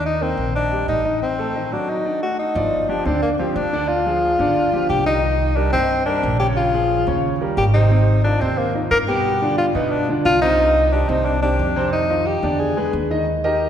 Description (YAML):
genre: Afro-Cuban jazz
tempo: 179 BPM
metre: 4/4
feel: straight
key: unclear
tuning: A4 = 441 Hz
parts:
  - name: breathy tenor saxophone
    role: melody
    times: 0.0-12.9 s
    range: Bb3 to Bb4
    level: -19 LUFS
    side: left 2 dB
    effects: none
  - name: warm concert grand piano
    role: accompaniment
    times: 0.0-13.7 s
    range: Cb3 to Eb5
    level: -23 LUFS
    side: right 1 dB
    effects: none
  - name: upright bass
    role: bass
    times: 0.0-13.7 s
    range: G1 to G2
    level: -22 LUFS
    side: right 1 dB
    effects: none
room: wet concert hall reverb, RT60 2.0 s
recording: recorded in a church or concert hall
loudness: -16 LUFS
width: side -9 dB against mid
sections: 0.0-2.6 A section; 2.6-13.3 B section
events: break 1.2-2.6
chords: 0.0 Ebmaj7; 1.2 Adim; 1.9 D; 2.6 G5; 3.9 Ddim; 4.6 G5; 5.2 Cm9; 6.6 Bbm7; 7.2 Eb7; 7.9 Ab6; 9.2 G7; 10.6 Cm; 11.9 F5; 12.6 E7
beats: 0.21 0.54 0.88 | 1.22 1.55 1.88 2.22 | 2.55 2.89 3.22 3.56 | 3.89 4.23 4.56 4.89 | 5.23 5.56 5.90 6.23 | 6.57 6.90 7.24 7.57 | 7.91 8.24 8.58 8.91 | 9.25 9.58 9.92 10.25 | 10.59 10.92 11.26 11.59 | 11.93 12.26 12.60 12.93 | 13.27 13.60